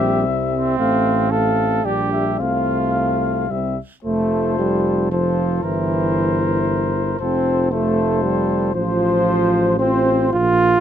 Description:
classical, brass quintet; 114 BPM; 3/4; straight; F major; A4 = 440 Hz
mellow trumpet; melody; 0.0-10.3 s; C5 to F5; -24 LUFS; left 9 dB
mellow trumpet; second line; 0.0-10.3 s; C4 to C5; -25 LUFS; right 8 dB
clear trombone; accompaniment; 0.0-10.8 s; E3 to F4; -20 LUFS; right 2 dB
warm French horn; accompaniment; 0.0-10.3 s; C4 to F4; -26 LUFS; left 6 dB
dark tuba; bass; 0.0-10.8 s; F1 to C2; -22 LUFS; right 3 dB
light reverb; close, detailed microphones; -16 LUFS; side -9 dB against mid
0.0-4.0 A section; 4.0-10.8 B section
0.0 C7/Bb; 0.8 F/A; 1.8 Gm/Bb; 2.4 F/C; 3.5 C; 4.0 F; 5.6 C7/G; 7.2 F; 8.8 F/A

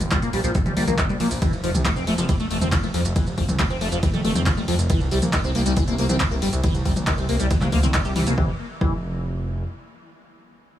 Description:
uplifting trance; 138 BPM; 4/4; straight; A4 = 440 Hz
fat analog bass; bass; 0.0-9.6 s; F1 to Bb2; -24 LUFS; equal; sidechain pumping
punchy analog drum machine; drums; 0.0-8.4 s; handclaps, hi-hat, ride cymbal, shaker, toms; -26 LUFS; equal; overdrive, sidechain pumping on hats, sidechain pumping on perc, sidechain pumping on toms, sidechain pumping on cymbals
liquid acid bass; arpeggios; 0.1-8.9 s; D3 to G4; -26 LUFS; left 1 dB; phaser, analog chorus, sidechain pumping, digital delay
electronic kick drum; drums; 0.1-8.9 s; -23 LUFS; equal; overdrive
little or no reverb; small room ambience; -19 LUFS; side -12 dB against mid
0.0-8.4 A section; 8.4-10.8 B section
drop 0.0-8.4
0.0 Bb5; 1.4 F; 4.9 C7(no3); 8.4 N.C.

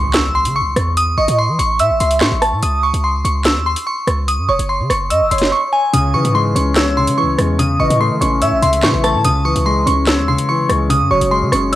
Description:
hip hop, drill; 145 BPM; 4/4; half-time; C# harmonic minor; A4 = 440 Hz
glassy synth bell; melody; 0.0-11.8 s; G#5 to E6; -17 LUFS; equal; chorus, phaser, cassette tape
hard-hitting 808-style bass; bass; 0.0-11.8 s; E1 to E3; -19 LUFS; equal
impact; sound effects; 0.0-1.0 s; -31 LUFS; equal
drill drum kit; drums; 0.1-11.8 s; handclaps, hi-hat, rim click, snare drum; -19 LUFS; equal; cassette tape
warm velvety synth lead; second line; 1.2-11.8 s; C#5 to E5; -19 LUFS; right 1 dB; chorus, cassette tape, analog delay
dark concert grand piano; accompaniment; 5.9-11.8 s; C#3 to C#5; -17 LUFS; left 2 dB; cassette tape
digital ambience; home recording on cassette; -13 LUFS; side -14 dB against mid
0.0-11.8 A section
impact 0.0-1.0; drums muted 5.5-5.9
0.0 C#m; 1.0 A; 2.6 C#maj7(no3); 4.3 F#5; 5.9 C#m; 7.6 A; 9.2 C#m; 10.9 F#sus2

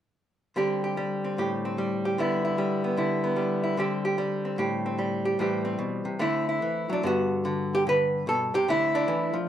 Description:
solo jazz; 149 BPM; 4/4; swing 65% on 8ths, rubato; G major; A4 = 440 Hz
archtop guitar, miked and amplified; solo; 0.6-9.5 s; G2 to B4; -24 LUFS; equal
moderate club reverb, RT60 0.8 s; -24 LUFS; side -10 dB against mid
0.6-7.1 A section; 7.1-9.5 B section
0.6 D7sus4; 2.2 G6/D; 3.8 D7sus4; 5.4 Am7; 6.2 D9; 7.1 Gmaj7; 8.7 Dm9

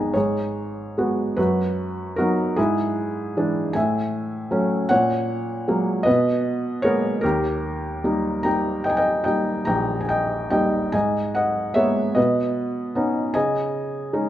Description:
classical, lyrical solo piano; 47-52 BPM (dotted quarters); 6/8; rubato; G# minor; A4 = 438 Hz
felt-muted upright piano; solo; 0.0-14.3 s; G#1 to A#5; -20 LUFS; equal
moderate recital hall reverb, RT60 1.9 s; minimal, uncompressed stereo recording; -20 LUFS; side -12 dB against mid
0.2-14.3 A section
felt piano fill 0.0
0.2 G#m7; 1.4 B/F#; 2.6 E7/G#; 3.8 A6; 4.9 F#add9/A#; 6.1 G#madd9/B; 7.2 D#; 10.9 G#madd9; 12.2 Badd9; 13.4 C#sus2

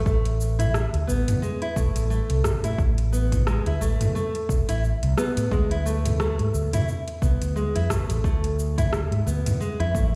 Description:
organic downtempo; 88 BPM; 4/4; swing 57% on 16ths; A harmonic minor; A4 = 441 Hz
nylon-string guitar; arpeggios; 0.1-10.1 s; G#3 to E4; -31 LUFS; equal; delay
fretless electric bass; bass; 0.1-10.2 s; E1 to A2; -26 LUFS; equal; tube saturation
deep house drum kit; drums; 0.1-10.1 s; hi-hat, rim click, shaker, toms; -31 LUFS; equal; overdrive
electronic kick drum; drums; 0.1-10.1 s; -27 LUFS; equal; overdrive
light reverb; played on a big sound system in a bare room, stone room reverb; -24 LUFS; mono
0.0-10.2 A section
drum fill 9.9
0.1 Asus2; 5.5 D5

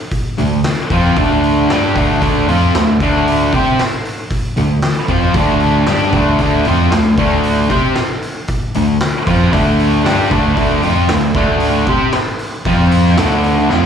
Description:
garage rock duo or trio; 115 BPM; 4/4; straight; D minor; A4 = 438 Hz
oversized low-tuned drum kit; drums; 0.1-13.9 s; hi-hat, kick drum, snare drum; -19 LUFS; equal
fuzz guitar; riff; 0.4-13.9 s; D3 to C5; -13 LUFS; equal; distortion, slapback echo
fingered electric bass; bass; 0.4-13.9 s; D2 to C3; -19 LUFS; equal
little or no reverb; live gig heard through the venue's PA, club reverb; -12 LUFS; side -8 dB against mid
0.0-13.9 A section
0.0 Dm; 12.7 F5; 13.2 D5

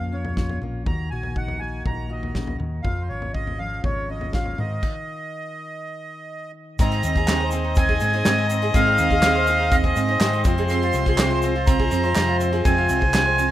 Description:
indie folk with a building arrangement; 122 BPM; 4/4; straight; A4 = 444 Hz
accordion; melody; 0.0-13.5 s; C5 to C6; -25 LUFS; right 1 dB; tape echo
fingerpicked steel-string acoustic guitar; accompaniment; 0.0-6.8 s; F2 to Ab4; -35 LUFS; left 3 dB
fingered electric bass; bass; 0.0-13.5 s; Ab1 to Ab2; -25 LUFS; equal
natural country drum kit; drums; 0.2-13.5 s; crash cymbal, hi-hat, kick drum, snare drum, toms; -23 LUFS; equal
warm fiddle; second line; 6.8-13.5 s; C5 to Eb5; -28 LUFS; left 4 dB
picked steel-string acoustic guitar; accompaniment; 6.8-13.5 s; F2 to Ab4; -28 LUFS; left 8 dB
mandolin; arpeggios; 6.8-13.5 s; C4 to C5; -26 LUFS; right 8 dB
tube shaker; percussion; 6.8-13.5 s; -40 LUFS; right 4 dB
group handclap; percussion; 7.3-13.3 s; -29 LUFS; right 2 dB
little or no reverb; rough home demo mix; -19 LUFS; side -13 dB against mid
0.0-6.8 A section; 6.8-13.5 B section
stop 4.8-6.8
0.0 Bbm; 0.9 Ebm; 2.8 Db; 4.6 Ab5; 6.8 Ab; 10.5 Fm

